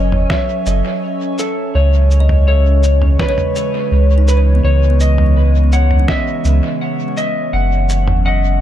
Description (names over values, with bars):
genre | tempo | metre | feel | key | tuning
ambient dub | 83 BPM | 4/4 | straight | C# minor | A4 = 440 Hz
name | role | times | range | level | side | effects
electric slide guitar | melody | 0.0-8.6 s | A4 to F#5 | -20 LUFS | left 1 dB | tape echo
warbly tape-like pad | sustained chords | 0.0-8.6 s | C#3 to G#5 | -24 LUFS | right 2 dB | chorus, built-in reverb
kalimba | arpeggios | 0.0-8.6 s | B3 to G#5 | -24 LUFS | left 6 dB | tape echo
warm sub bass | bass | 0.0-8.6 s | F#1 to C#2 | -11 LUFS | equal | none
bubbling stepped-filter texture | texture | 0.0-8.6 s | C#4 to C#5 | -27 LUFS | equal | chorus, built-in reverb
lo-fi sampler-style drum kit | drums | 0.1-8.2 s | cabasa, snare drum, toms | -24 LUFS | right 1 dB | small room ambience, dub echo
electronic kick drum | drums | 0.3-6.2 s | none | -21 LUFS | equal | small room ambience
room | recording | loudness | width
little or no reverb | echo-heavy mix | -12 LUFS | side -11 dB against mid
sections
0.0-8.6 A section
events
none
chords
0.0 F#m7; 1.7 C#m9; 7.5 F#7(no3)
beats
0.30 1.02 | 1.75 2.47 3.19 3.92 | 4.64 5.36 6.08 6.81 | 7.53 8.25